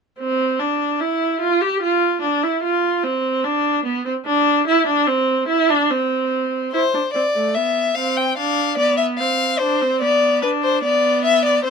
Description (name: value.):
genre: classical, baroque-style fugue for string quartet.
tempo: 73 BPM.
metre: 4/4.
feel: straight.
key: C major.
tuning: A4 = 440 Hz.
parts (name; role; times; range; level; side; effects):
rich viola; accompaniment; 0.2-11.7 s; A3 to G4; -18 LUFS; right 2 dB; none.
rich violin; second line; 6.7-11.7 s; B4 to G5; -17 LUFS; left 3 dB; none.
room: light reverb.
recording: close, detailed microphones.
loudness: -16 LUFS.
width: side -5 dB against mid.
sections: 0.2-6.7 A section; 6.7-11.7 B section.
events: none.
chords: 0.2 N.C.; 6.7 C; 8.4 Dm; 10.0 Bm.